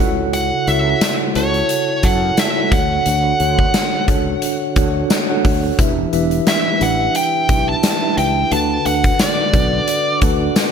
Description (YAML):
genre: 1980s-style pop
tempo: 88 BPM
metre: 4/4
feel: swing 55% on 16ths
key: D major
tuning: A4 = 440 Hz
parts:
  - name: mellow tine electric piano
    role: accompaniment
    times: 0.0-10.7 s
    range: C#3 to A5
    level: -20 LUFS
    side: right 1 dB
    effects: medium stereo tremolo
  - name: sustaining fretless electric bass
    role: bass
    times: 0.0-10.5 s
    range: E1 to F#2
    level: -21 LUFS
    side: left 1 dB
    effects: lush chorus
  - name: big rock drum kit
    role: drums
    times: 0.0-10.7 s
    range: hi-hat, kick drum, snare drum, tambourine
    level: -18 LUFS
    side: equal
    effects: gated reverb
  - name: high-gain lead guitar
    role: melody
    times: 0.3-10.2 s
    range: C#5 to A5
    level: -19 LUFS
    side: right 2 dB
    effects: distortion, digital delay
room: light reverb, studio reverb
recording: none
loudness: -14 LUFS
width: side -7 dB against mid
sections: 0.0-10.7 A section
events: none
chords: 0.0 F#m7/C#; 2.7 Dmaj7; 5.8 Em7; 8.5 Bm7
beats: | 0.33 1.01 1.70 2.38 | 3.06 3.74 4.42 5.11 | 5.79 6.47 7.15 7.83 | 8.51 9.20 9.88 10.56